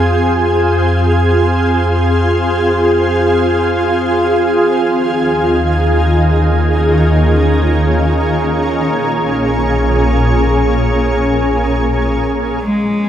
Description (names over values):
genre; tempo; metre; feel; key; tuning
ambient; free time; none; none; unclear; A4 = 440 Hz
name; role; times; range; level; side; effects
shimmering ambient pad; sustained chords; 0.0-13.1 s; Bb2 to Ab4; -13 LUFS; equal; chorus, built-in reverb
deep rumbling drone; bass; 0.0-13.1 s; Ab1 to F2; -16 LUFS; equal; built-in reverb, phaser
bowed-like drone; drone; 0.0-13.1 s; F3 to F4; -31 LUFS; equal; none
rich cello; melody; 12.6-13.1 s; Ab3; -14 LUFS; left 1 dB; none
room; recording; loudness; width
wet lush hall reverb, RT60 2.7 s; dreamy mix soaked in reverb; -11 LUFS; side -10 dB against mid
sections
0.0-12.6 A section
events
none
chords
0.0 Fm; 4.8 Eb7sus4; 8.7 Bbm7